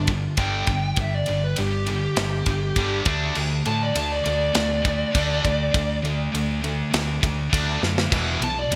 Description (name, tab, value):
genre	hard rock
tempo	101 BPM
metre	4/4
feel	straight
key	G major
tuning	A4 = 440 Hz
part	smooth overdriven lead guitar	melody	0.0-8.7 s	G4 to A5	-29 LUFS	equal	none
part	distorted electric guitar	riff	0.0-8.8 s	E2 to D4	-30 LUFS	equal	overdrive
part	scooped high-gain guitar	riff	0.0-8.8 s	E2 to D4	-32 LUFS	equal	distortion
part	hollow-body short-scale picked electric bass	bass	0.0-8.8 s	E1 to A2	-29 LUFS	equal	none
part	tight metal drum kit	drums	0.1-8.8 s	crash cymbal, kick drum, ride cymbal, snare drum	-29 LUFS	equal	gated reverb
room	moderate lush hall reverb, RT60 2.3 s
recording	bright 1980s-style digital production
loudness	-23 LUFS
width	mono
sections	0.0-8.8 A section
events	lead electric guitar solo 0.0-8.8; drum fill 7.8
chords	0.0 G5; 3.1 D5; 8.1 E5